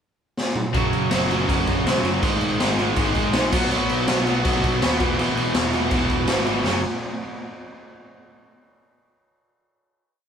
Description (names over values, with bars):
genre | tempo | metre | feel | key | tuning
punk rock | 162 BPM | 4/4 | straight | unclear | A4 = 440 Hz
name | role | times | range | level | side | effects
raw garage drum kit | drums | 0.4-6.7 s | crash cymbal, kick drum, snare drum, toms | -22 LUFS | equal | none
distorted electric guitar | riff | 0.7-6.8 s | E2 to B3 | -24 LUFS | right 6 dB | distortion
distorted electric guitar | riff | 0.7-6.8 s | E2 to B3 | -30 LUFS | left 1 dB | none
overdriven electric guitar | riff | 0.7-6.8 s | E2 to B3 | -26 LUFS | left 8 dB | none
overdriven picked electric bass | bass | 0.7-6.8 s | E1 to D#2 | -29 LUFS | left 1 dB | none
room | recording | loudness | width
light reverb | band playing live in one room | -19 LUFS | side -7 dB against mid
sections
0.0-0.7 pickup bar; 0.7-6.7 riff; 6.7-8.1 final chord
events
drum fill 0.4-0.7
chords
0.0 N.C.; 0.7 F#5; 2.2 G#5; 3.5 B5; 5.0 E; 6.7 F#5